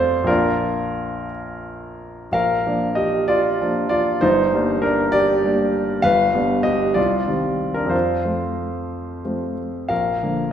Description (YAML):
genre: classical, romantic character piece for solo piano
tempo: 56-67 BPM (dotted quarters)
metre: 6/8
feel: rubato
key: Bb major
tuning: A4 = 440 Hz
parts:
  - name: warm baby grand piano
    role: solo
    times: 0.0-10.5 s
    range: G1 to F5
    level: -18 LUFS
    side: equal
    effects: none
room: wet scoring stage reverb, RT60 1.6 s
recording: heard from further back in the room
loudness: -18 LUFS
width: side -9 dB against mid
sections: 0.0-2.3 A section; 2.3-10.5 A section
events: none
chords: 0.3 Bb; 4.2 Gm; 6.0 G7; 7.0 Cm; 7.9 F; 9.9 Bb